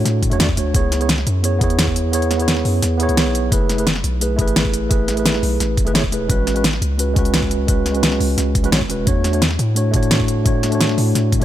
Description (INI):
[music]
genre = liquid drum and bass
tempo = 173 BPM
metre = 4/4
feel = straight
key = F# minor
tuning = A4 = 435 Hz
[part]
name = mellow tine electric piano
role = accompaniment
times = 0.0-11.4 s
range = G#3 to D5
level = -20 LUFS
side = right 1 dB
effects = medium stereo tremolo, digital delay
[part]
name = long sustained 808-style bass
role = bass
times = 0.0-11.4 s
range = E1 to A2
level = -20 LUFS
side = equal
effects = none
[part]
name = pop drum kit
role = drums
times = 0.1-11.4 s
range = hi-hat, snare drum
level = -20 LUFS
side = equal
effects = none
[part]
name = electronic kick drum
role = drums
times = 0.2-11.4 s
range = none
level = -20 LUFS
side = equal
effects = none
[sound]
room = digital ambience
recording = none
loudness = -15 LUFS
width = side -12 dB against mid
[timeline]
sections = 0.0-11.4 A section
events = kick drops out 2.1-3.5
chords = 0.0 E13sus4; 0.7 C#m7; 3.5 F#m11; 9.1 E13sus4